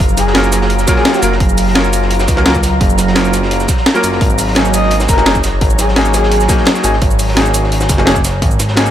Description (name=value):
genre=liquid drum and bass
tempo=171 BPM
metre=4/4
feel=straight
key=unclear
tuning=A4 = 440 Hz
part: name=glassy FM pad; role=sustained chords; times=0.0-8.9 s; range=Gb3 to Bb5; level=-19 LUFS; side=right 1 dB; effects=ensemble chorus, built-in reverb, sidechain pumping
part: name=smooth synth bass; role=bass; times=0.0-8.9 s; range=Gb1 to Db2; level=-16 LUFS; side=equal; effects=none
part: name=breakbeat sampler-style drum kit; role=drums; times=0.0-8.9 s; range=hi-hat, shaker, snare drum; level=-16 LUFS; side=equal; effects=none
part: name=crunchy breakbeat drum kit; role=drums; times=0.0-8.9 s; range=hi-hat, snare drum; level=-24 LUFS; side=equal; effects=high-pass filter on hats, high-pass filter on snare, high-pass filter on room
part: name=electronic kick drum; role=drums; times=0.0-8.5 s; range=none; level=-15 LUFS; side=equal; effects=none
part: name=breathy flute-like synth lead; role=melody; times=0.2-1.2, 4.7-6.4 s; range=Ab4 to Eb5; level=-20 LUFS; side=equal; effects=lush chorus, digital delay
part: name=bright baby grand piano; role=accompaniment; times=0.3-8.9 s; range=Gb3 to Bb4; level=-17 LUFS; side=left 1 dB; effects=digital delay
room=light reverb, small room ambience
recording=none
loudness=-10 LUFS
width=side -11 dB against mid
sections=0.0-8.9 A section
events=none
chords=0.0 Gbmaj7; 4.2 Ab9sus4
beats=| 0.00 0.35 0.70 1.05 | 1.40 1.75 2.10 2.46 | 2.81 3.16 3.51 3.86 | 4.21 4.56 4.91 5.26 | 5.61 5.96 6.32 6.67 | 7.02 7.37 7.72 8.07 | 8.42 8.77